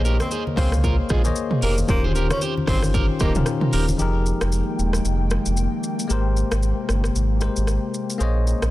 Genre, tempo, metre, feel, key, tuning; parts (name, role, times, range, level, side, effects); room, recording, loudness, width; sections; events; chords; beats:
afrobeats; 114 BPM; 4/4; swing 58% on 16ths; F minor; A4 = 440 Hz
bell-like tine electric piano; accompaniment; 0.0-8.7 s; Eb3 to F5; -26 LUFS; left 5 dB
electric guitar at the edge of break-up; riff; 0.0-3.9 s; Eb4 to C5; -29 LUFS; right 4 dB; digital delay
sub bass with octave; bass; 0.0-8.7 s; Eb1 to Db2; -21 LUFS; equal
deep house drum kit; drums; 0.1-8.7 s; hi-hat, kick drum, rim click, shaker, toms; -25 LUFS; equal; overdrive
breathy tenor saxophone; melody; 0.2-3.3 s; Ab3 to Db4; -30 LUFS; equal; digital delay
congas; percussion; 0.2-4.0 s; -31 LUFS; right 2 dB
airy breathy pad; sustained chords; 4.0-8.7 s; C3 to G5; -29 LUFS; left 2 dB; chorus
little or no reverb; dense, heavily limited modern master; -19 LUFS; side -16 dB against mid
0.0-4.0 A section; 4.0-8.7 B section
0.0 Bbm11; 1.9 Eb13; 4.0 Fm11; 6.1 Abmaj9
0.31 0.84 1.36 | 1.89 2.42 2.94 3.47 | 4.00 4.52 5.05 5.58 | 6.10 6.63 7.15 7.68 | 8.21